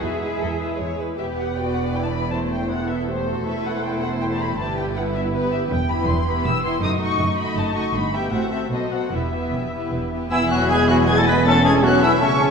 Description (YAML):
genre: quick classical-period movement for symphony orchestra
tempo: 159 BPM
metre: 3/4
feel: rubato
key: E minor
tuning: A4 = 441 Hz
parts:
  - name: muted symphonic violin section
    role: melody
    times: 0.0-12.5 s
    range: B4 to B6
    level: -26 LUFS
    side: left 3 dB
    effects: none
  - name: muted chamber violin section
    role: second line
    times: 0.0-12.5 s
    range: E4 to E5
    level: -29 LUFS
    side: left 3 dB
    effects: none
  - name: muted chamber viola section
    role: accompaniment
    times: 0.0-12.5 s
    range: G3 to G4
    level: -25 LUFS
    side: right 1 dB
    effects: none
  - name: muted chamber double bass section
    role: bass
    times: 0.0-12.5 s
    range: E1 to E2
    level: -26 LUFS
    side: right 3 dB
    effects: none
  - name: muted symphonic cello section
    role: bass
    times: 0.0-12.5 s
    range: E2 to G#4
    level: -28 LUFS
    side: right 2 dB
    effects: none
  - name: concert flute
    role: second line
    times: 10.3-12.5 s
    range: G#5 to A5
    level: -26 LUFS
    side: left 2 dB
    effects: none
  - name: mellow clarinet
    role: second line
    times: 10.3-12.5 s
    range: B3 to C#4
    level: -26 LUFS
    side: equal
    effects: none
  - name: warm cor anglais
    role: second line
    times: 10.3-12.5 s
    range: C#4 to B4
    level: -25 LUFS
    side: right 2 dB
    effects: none
  - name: dark French horn section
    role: sustained chords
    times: 10.3-12.5 s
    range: C#3 to B3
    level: -22 LUFS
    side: left 4 dB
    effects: none
  - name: warm trumpet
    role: stabs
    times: 10.3-12.5 s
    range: C#4 to B4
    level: -23 LUFS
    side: right 1 dB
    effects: none
room: wet recital hall reverb, RT60 1.5 s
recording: none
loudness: -18 LUFS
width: side -6 dB against mid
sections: 0.0-1.2 A section; 1.2-10.3 B section; 10.3-12.5 B section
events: none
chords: 0.0 E; 1.2 Em; 2.3 Am/E; 3.5 Em; 4.6 Em/G; 5.7 Em; 6.8 D#dim/F#; 7.9 Em/G; 8.3 F#m7b5/A; 8.7 B7b9; 9.1 Em; 10.3 E; 11.5 A/E